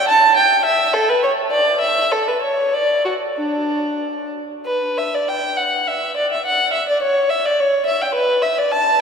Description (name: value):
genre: classical, baroque-style suite movement for unaccompanied violin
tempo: 88-108 BPM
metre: 3/4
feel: rubato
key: D major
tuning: A4 = 440 Hz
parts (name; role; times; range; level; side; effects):
- dark violin; solo; 0.0-9.0 s; D4 to A5; -15 LUFS; equal; none
room: wet cathedral reverb, RT60 5.5 s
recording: heard from further back in the room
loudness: -15 LUFS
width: side -6 dB against mid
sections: 0.0-4.7 A section; 4.7-9.0 A section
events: none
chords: none